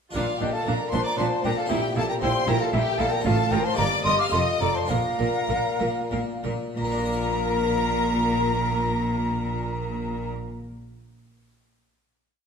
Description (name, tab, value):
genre	classical, baroque-style concerto movement with solo episodes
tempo	88-117 BPM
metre	3/4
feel	straight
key	Bb major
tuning	A4 = 442 Hz
part	mellow hollow concert flute	melody	0.1-10.3 s	D5 to D6	-28 LUFS	equal	none
part	rich chamber violin section	melody	0.1-10.3 s	F5 to F6	-32 LUFS	left 4 dB	none
part	rich chamber violin section	second line	0.1-10.3 s	F4 to Bb5	-30 LUFS	left 2 dB	none
part	harpsichord	accompaniment	0.1-10.6 s	F2 to F5	-31 LUFS	left 2 dB	none
part	rich symphonic viola section	accompaniment	0.2-10.3 s	D4 to Bb4	-31 LUFS	left 2 dB	none
part	rich chamber double bass section	bass	0.2-10.3 s	F1 to Bb1	-30 LUFS	right 3 dB	none
part	rich studio cello section	bass	0.2-10.3 s	F2 to Bb2	-30 LUFS	right 2 dB	none
room	wet recital hall reverb, RT60 1.3 s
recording	none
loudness	-22 LUFS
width	side -6 dB against mid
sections	0.2-6.8 ritornello; 6.8-10.8 final chord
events	slowing down 2.5-6.8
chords	0.2 Bb; 1.7 C7/Bb; 3.2 F/A; 3.8 Eb/G; 4.3 F7; 4.9 Bb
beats	| 0.15 0.67 1.19 | 1.70 2.22 2.73 | 3.25 3.78 4.32 | 4.89 5.49 6.11 | 6.78 7.45 8.13 | 8.81 9.48 10.16